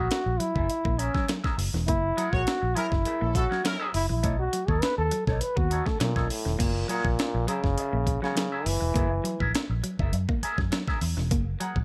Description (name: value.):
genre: funk.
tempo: 102 BPM.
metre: 4/4.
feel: straight.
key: F# mixolydian.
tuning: A4 = 440 Hz.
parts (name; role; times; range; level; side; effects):
clear trombone; melody; 0.0-9.5 s; A2 to B4; -31 LUFS; equal; none.
semi-hollow electric guitar; accompaniment; 0.0-11.8 s; D#4 to F#5; -37 LUFS; equal; wah.
vintage muted fingered electric bass; bass; 0.0-11.8 s; E1 to B2; -30 LUFS; equal; none.
breakbeat sampler-style drum kit; drums; 0.1-11.8 s; crash cymbal, hi-hat, kick drum, snare drum; -31 LUFS; equal; none.
semi-hollow electric guitar; riff; 0.4-11.8 s; D#3 to B3; -38 LUFS; equal; spring reverb.
clear horn section; second line; 2.3-3.9 s; C#4 to C#5; -37 LUFS; equal; none.
room: digital ambience.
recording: none.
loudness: -27 LUFS.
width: mono.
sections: 0.0-6.6 A section; 6.6-11.8 B section.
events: trombone solo 0.0-6.6.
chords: 0.0 F#9; 4.2 B9; 6.6 F#9.